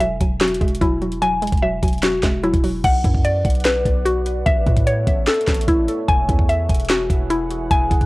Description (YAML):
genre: hip hop, trap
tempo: 148 BPM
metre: 4/4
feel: half-time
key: unclear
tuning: A4 = 442 Hz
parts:
  - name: hollow square pluck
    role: accompaniment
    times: 0.0-2.8 s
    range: F#3 to G#3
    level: -25 LUFS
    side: right 2 dB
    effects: chorus, cassette tape
  - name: mallet-like synth pluck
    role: arpeggios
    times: 0.0-8.1 s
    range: E4 to G#5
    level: -20 LUFS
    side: left 1 dB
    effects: chorus, cassette tape, tape echo
  - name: warm 808-style bass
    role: bass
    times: 0.0-8.1 s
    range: E1 to A2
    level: -23 LUFS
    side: equal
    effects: none
  - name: trap drum kit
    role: drums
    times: 0.0-8.1 s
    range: crash cymbal, handclaps, hi-hat, kick drum, snare drum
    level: -19 LUFS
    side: equal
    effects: none
  - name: deep dark ambient pad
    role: sustained chords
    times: 3.2-8.1 s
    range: E3 to F#5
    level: -30 LUFS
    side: right 2 dB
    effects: chorus, built-in reverb, cassette tape
room: little or no reverb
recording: home recording on cassette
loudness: -16 LUFS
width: side -20 dB against mid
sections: 0.0-2.8 A section; 2.8-8.1 B section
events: none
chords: 0.0 Eadd9; 2.8 Bm; 4.5 A; 6.1 Eadd9